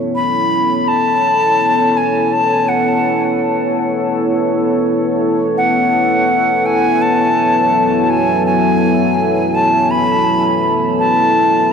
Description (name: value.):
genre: ambient.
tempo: free time.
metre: none.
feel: none.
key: F# minor.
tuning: A4 = 441 Hz.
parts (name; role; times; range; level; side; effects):
deep dark ambient pad; sustained chords; 0.0-11.7 s; F#3 to C#5; -15 LUFS; equal; chorus, built-in reverb.
silver concert flute; melody; 0.2-11.7 s; F#5 to B5; -15 LUFS; left 1 dB; dub echo.
room: wet lush hall reverb, RT60 2.0 s.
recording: none.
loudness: -12 LUFS.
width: side -6 dB against mid.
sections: 0.0-11.7 A section.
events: none.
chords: 0.0 F#m7; 0.9 Bsus2; 6.7 F#m9.